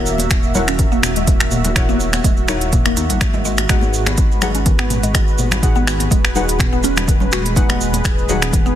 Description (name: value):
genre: afro house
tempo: 124 BPM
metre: 4/4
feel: swing 54% on 16ths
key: G# minor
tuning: A4 = 439 Hz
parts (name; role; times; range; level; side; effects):
- warm analog pad; sustained chords; 0.0-8.8 s; G#3 to E5; -24 LUFS; right 2 dB; chorus, sidechain pumping
- deep mellow chord stab; stabs; 0.0-8.8 s; D#4 to F#5; -26 LUFS; left 3 dB; chorus, sidechain pumping, digital delay
- dark detuned saw bass; bass; 0.0-8.8 s; D#1 to D#2; -22 LUFS; equal; sidechain pumping
- tube shaker; percussion; 0.1-8.8 s; none; -29 LUFS; right 5 dB; none
- afro-pop drum kit; drums; 0.2-8.6 s; finger snaps, hi-hat, toms; -21 LUFS; equal; soft clipping on snare
- congas; percussion; 0.2-8.6 s; none; -26 LUFS; left 4 dB; none
- electronic kick drum; drums; 0.3-8.6 s; none; -16 LUFS; equal; none
- mallet-like synth pluck; arpeggios; 0.5-8.7 s; D#3 to F#4; -24 LUFS; equal; chorus, phaser, sidechain pumping, digital delay
room: digital ambience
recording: dense, heavily limited modern master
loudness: -13 LUFS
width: side -11 dB against mid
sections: 0.0-8.8 A section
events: none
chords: 0.0 F#7; 3.7 G#m7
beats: 0.31 0.79 1.27 | 1.76 2.24 2.73 3.21 | 3.69 4.18 4.66 5.14 | 5.63 6.11 6.60 7.08 | 7.57 8.05 8.53